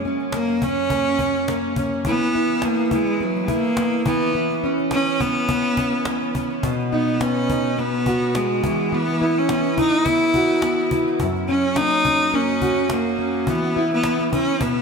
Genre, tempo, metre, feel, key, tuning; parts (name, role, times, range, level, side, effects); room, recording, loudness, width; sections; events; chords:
acoustic pop; 105 BPM; 4/4; swing 55% on 16ths; A4 = 437 Hz
fingerpicked plugged-in steel-string acoustic guitar; accompaniment; 0.0-14.8 s; F#2 to F#4; -21 LUFS; equal; double-tracked left and right
cajon; drums; 0.0-14.8 s; -30 LUFS; equal
clear cello; melody; 0.3-14.8 s; F#3 to E4; -22 LUFS; equal; diffuse ambient delay
wet lush hall reverb, RT60 1.9 s, studio reverb; dreamy mix soaked in reverb; -18 LUFS; side -5 dB against mid
0.0-6.6 A section; 6.6-14.8 B section
0.0 F#; 2.1 E5; 4.1 C#m7/E; 6.6 B; 8.6 Esus2; 11.2 F#; 13.5 E5